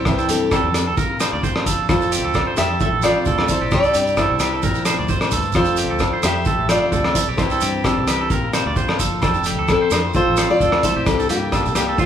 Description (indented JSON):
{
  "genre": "highlife guitar band",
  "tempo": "131 BPM",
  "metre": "4/4",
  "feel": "swing 53% on 16ths",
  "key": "F major",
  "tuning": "A4 = 440 Hz",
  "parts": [
    { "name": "fingerpicked steel-string acoustic guitar", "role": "melody", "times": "0.0-12.1 s", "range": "Bb3 to E5", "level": "-21 LUFS", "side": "left 2 dB", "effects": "none" },
    { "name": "picked steel-string acoustic guitar", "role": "accompaniment", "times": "0.0-12.1 s", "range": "F2 to A4", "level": "-28 LUFS", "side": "left 2 dB", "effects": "none" },
    { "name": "electric guitar at the edge of break-up", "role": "arpeggios", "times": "0.0-12.1 s", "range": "F4 to D5", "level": "-23 LUFS", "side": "right 5 dB", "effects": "spring reverb" },
    { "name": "fingered electric bass", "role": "bass", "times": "0.0-12.1 s", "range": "F1 to G2", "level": "-27 LUFS", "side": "equal", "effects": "none" },
    { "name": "cloth-damped thuddy drum kit", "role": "drums", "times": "0.1-12.1 s", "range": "hi-hat, kick drum, rim click", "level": "-22 LUFS", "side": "equal", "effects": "none" },
    { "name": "agogo bells", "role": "percussion", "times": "0.1-11.9 s", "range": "none", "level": "-28 LUFS", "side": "left 9 dB", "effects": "none" },
    { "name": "shekere", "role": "percussion", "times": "0.1-12.1 s", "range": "none", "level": "-28 LUFS", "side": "right 4 dB", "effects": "none" }
  ],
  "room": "moderate large studio reverb, RT60 1.3 s",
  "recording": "band playing live in one room",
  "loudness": "-16 LUFS",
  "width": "side -9 dB against mid",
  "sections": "0.0-12.1 A section",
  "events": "none",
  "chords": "0.1 C; 1.0 Bbadd9; 1.9 F; 3.7 C; 4.6 Bbadd9; 5.6 F; 7.4 C; 8.3 Bbadd9; 9.2 F; 11.1 C"
}